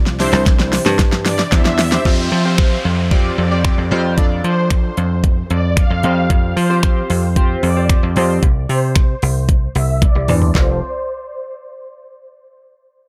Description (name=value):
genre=dance-pop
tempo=113 BPM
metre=4/4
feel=straight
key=F major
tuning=A4 = 440 Hz
part: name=glassy FM pad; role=sustained chords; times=0.0-2.0 s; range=C3 to D4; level=-33 LUFS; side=equal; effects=none
part: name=dry thumbed slap bass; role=bass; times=0.0-10.8 s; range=F1 to F3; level=-20 LUFS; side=equal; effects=sidechain pumping
part: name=pop drum kit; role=drums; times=0.1-10.7 s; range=finger snaps, handclaps, hi-hat, kick drum, shaker, snare drum, toms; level=-18 LUFS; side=equal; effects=none
part: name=supersaw pad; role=melody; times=0.2-10.8 s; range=C5 to F5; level=-27 LUFS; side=equal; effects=sidechain pumping, low-pass filter
part: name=chorused retro synth keys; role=accompaniment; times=0.2-10.8 s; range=C4 to D5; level=-24 LUFS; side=equal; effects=sidechain pumping, low-pass filter
part: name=downlifter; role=sound effects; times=2.1-6.3 s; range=none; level=-30 LUFS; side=equal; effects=none
room=little or no reverb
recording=dry, gritty hardware recording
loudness=-15 LUFS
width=mono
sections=0.0-2.1 A section; 2.1-10.5 B section; 10.5-12.7 C section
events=drop 0.0-2.1; drum fill 0.0-2.1, 10.0-10.5; filter sweep 2.1-10.5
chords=0.0 Cadd9; 2.1 Fsus2; 4.2 Dm/F; 6.0 Fsus2; 8.4 Cadd9; 10.5 F